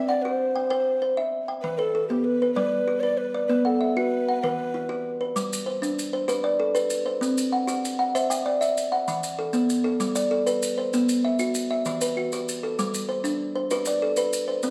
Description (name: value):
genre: southern african traditional, mbira-style interlocking cycle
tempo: 129 BPM (dotted quarters)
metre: 12/8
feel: straight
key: G major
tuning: A4 = 440 Hz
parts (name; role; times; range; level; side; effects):
- breathy mellow Native American-style cedar flute; melody; 0.0-5.2 s; G4 to D5; -28 LUFS; equal; none
- kalimba; arpeggios; 0.0-14.7 s; E3 to G5; -26 LUFS; equal; none
- maracas; percussion; 5.4-14.7 s; none; -36 LUFS; equal; none
room: wet large studio reverb, RT60 1.3 s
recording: band playing live in one room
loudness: -25 LUFS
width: mono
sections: 0.0-5.4 A section; 5.4-14.7 B section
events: none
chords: 0.0 C; 1.6 Em; 2.6 G; 3.5 Bm; 4.4 Em; 5.4 G; 7.2 C; 9.1 E5; 10.0 G; 10.9 B5; 11.8 Em; 12.8 G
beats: 0.24 0.71 1.17 | 1.64 2.11 2.57 3.04 | 3.50 3.97 4.43 4.90 | 5.36 5.83 6.29 6.75 | 7.22 7.68 8.14 8.61 | 9.07 9.53 10.00 10.46 | 10.92 11.39 11.85 12.31 | 12.78 13.24 13.71 14.17 | 14.63